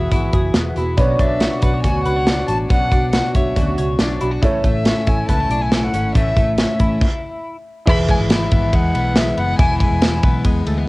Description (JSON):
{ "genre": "jangly indie pop", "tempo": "139 BPM", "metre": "4/4", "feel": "straight", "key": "unclear", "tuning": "A4 = 441 Hz", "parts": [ { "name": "dark violin", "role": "melody", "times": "0.0-10.2 s", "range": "E5 to B5", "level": "-23 LUFS", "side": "left 1 dB", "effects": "cassette tape, analog delay" }, { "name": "picked steel-string acoustic guitar", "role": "accompaniment", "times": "0.0-7.0 s", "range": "A2 to A4", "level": "-25 LUFS", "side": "right 2 dB", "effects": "cassette tape" }, { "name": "twelve-string electric guitar", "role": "arpeggios", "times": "0.0-10.9 s", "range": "A2 to C#5", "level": "-23 LUFS", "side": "left 2 dB", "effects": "wide subtle chorus, cassette tape" }, { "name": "vintage muted fingered electric bass", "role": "bass", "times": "0.0-10.8 s", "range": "E1 to E2", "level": "-22 LUFS", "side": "equal", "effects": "none" }, { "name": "modern studio drum kit", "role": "drums", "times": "0.1-10.8 s", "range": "crash cymbal, hi-hat, kick drum, ride cymbal, snare drum", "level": "-17 LUFS", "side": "equal", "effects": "cassette tape" }, { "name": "warm upright piano", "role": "accompaniment", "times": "1.0-10.9 s", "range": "D4 to E5", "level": "-26 LUFS", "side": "right 2 dB", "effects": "cassette tape" } ], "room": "light reverb", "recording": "home recording on cassette", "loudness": "-14 LUFS", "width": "side -22 dB against mid", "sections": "0.0-7.9 A section; 7.9-10.9 B section", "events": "stop 7.0-7.9", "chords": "0.0 Eadd9; 1.0 Bmadd9; 4.4 A; 7.9 E", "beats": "0.12 0.55 | 0.98 1.41 1.84 2.27 | 2.70 3.13 3.56 4.00 | 4.42 4.86 5.29 5.72 | 6.15 6.58 7.01 7.44 | 7.87 8.30 8.73 9.16 | 9.59 10.02 10.45 10.88" }